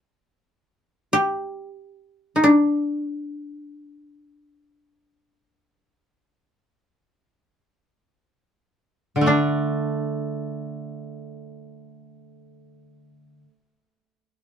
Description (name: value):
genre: japanese traditional, Japanese chamber music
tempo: free time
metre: none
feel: none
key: unclear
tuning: A4 = 440 Hz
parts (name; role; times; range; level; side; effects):
- koto; melody; 1.1-13.5 s; D4 to G4; -20 LUFS; left 1 dB; none
- koto; accompaniment; 9.2-13.5 s; D3 to D4; -24 LUFS; right 1 dB; none
room: light reverb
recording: minimal, uncompressed stereo recording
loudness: -20 LUFS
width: side -8 dB against mid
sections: 0.0-9.3 A section; 9.3-14.4 B section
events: slowing down 3.3-9.3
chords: none